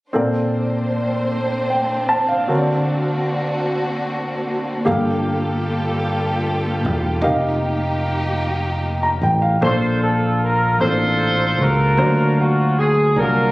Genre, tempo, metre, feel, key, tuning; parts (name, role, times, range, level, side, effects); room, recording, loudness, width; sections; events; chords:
slow gospel; 51 BPM (dotted quarters); 6/8; straight; Bb major; A4 = 440 Hz
warm grand piano; accompaniment; 0.1-13.5 s; G2 to Bb5; -20 LUFS; equal
warm studio string section; sustained chords; 0.1-9.6 s; Bb3 to C5; -24 LUFS; equal
fingered electric bass; bass; 4.9-13.5 s; E1 to D2; -20 LUFS; equal
mellow horn section; melody; 9.6-13.5 s; E#4 to C5; -18 LUFS; equal; tape echo
light reverb; recorded on a phone in the room, club reverb, compression; -16 LUFS; side -20 dB against mid
0.1-9.6 A section; 9.6-13.5 B section
0.1 Bbmaj9; 2.5 Daug7; 4.9 Gm9; 7.2 F9sus4; 9.6 Bbmaj9; 12.0 D7alt